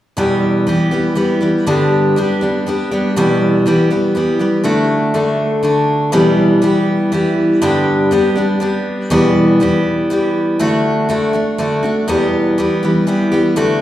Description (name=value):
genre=country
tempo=121 BPM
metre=3/4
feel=straight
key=E minor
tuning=A4 = 440 Hz
part: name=picked steel-string acoustic guitar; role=solo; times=0.2-13.8 s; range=E2 to G4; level=-12 LUFS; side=equal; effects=none
room=wet recital hall reverb, RT60 1.4 s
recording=recorded in a church or concert hall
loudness=-12 LUFS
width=side -13 dB against mid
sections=0.2-6.1 A section; 6.1-13.8 B section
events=none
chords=0.2 Em; 1.7 G; 3.2 Em; 4.6 D; 6.1 Em; 7.6 G; 9.1 Em; 10.6 D; 12.1 Em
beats=| 0.17 0.67 1.17 | 1.67 2.16 2.66 | 3.16 3.65 4.15 | 4.65 5.14 5.64 | 6.13 6.63 7.13 | 7.62 8.12 8.61 | 9.11 9.60 10.10 | 10.60 11.09 11.59 | 12.08 12.58 13.07 | 13.57